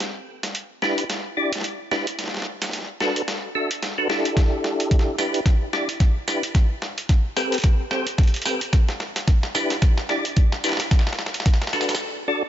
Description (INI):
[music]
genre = glitch hop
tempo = 110 BPM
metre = 4/4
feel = swing 58% on 16ths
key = E minor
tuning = A4 = 440 Hz
[part]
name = boom bap sampler-style drum kit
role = drums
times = 0.0-12.1 s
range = hi-hat, snare drum, tambourine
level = -27 LUFS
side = equal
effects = overdrive, high-pass filter on snare, high-pass filter on hats, high-pass filter on perc, high-pass filter on room
[part]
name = percussive tonewheel organ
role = stabs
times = 0.8-12.4 s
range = C4 to E5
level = -24 LUFS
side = equal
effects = chorus vibrato, fast rotary speaker, sidechain pumping, ping-pong delay
[part]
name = electronic kick drum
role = drums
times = 4.4-11.6 s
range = none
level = -17 LUFS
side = equal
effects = overdrive
[sound]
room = light reverb, digital ambience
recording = nothing above 7.7 kHz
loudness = -20 LUFS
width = side -11 dB against mid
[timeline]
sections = 0.0-12.5 A section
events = build-up 0.0-12.5; drum fill 0.0-12.0; break 12.0-12.5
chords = 0.0 Em7; 2.2 Bm7; 4.4 Em7; 6.6 Am9; 8.7 Em7; 10.9 Bm7